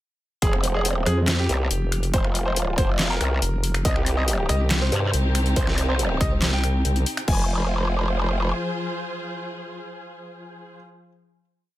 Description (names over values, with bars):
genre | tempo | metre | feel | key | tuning
heavy wobble dubstep | 140 BPM | 4/4 | half-time | F minor | A4 = 440 Hz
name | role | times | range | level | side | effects
clear concert grand piano | melody | 0.4-10.7 s | C4 to Ab5 | -30 LUFS | right 1 dB | vintage 12-bit sampler grit, ping-pong delay
growl bass | bass | 0.4-8.5 s | F1 to G2 | -23 LUFS | equal | chorus, overdrive
dubstep drum kit | drums | 0.4-7.4 s | crash cymbal, finger snaps, handclaps, hi-hat, snare drum | -26 LUFS | left 1 dB | overdrive
electronic kick drum | drums | 0.4-7.4 s | none | -23 LUFS | equal | none
vowel-sweep wobble bass | bass | 1.1-7.0 s | F1 to F2 | -22 LUFS | equal | chorus, overdrive
dark studio string section | sustained chords | 3.8-10.7 s | C3 to C5 | -30 LUFS | equal | sidechain pumping
room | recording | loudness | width
digital ambience | none | -20 LUFS | side -15 dB against mid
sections
0.4-7.3 drop; 7.3-10.7 final chord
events
drop 0.4-7.3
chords
0.4 F5; 3.9 Cm; 7.3 Fm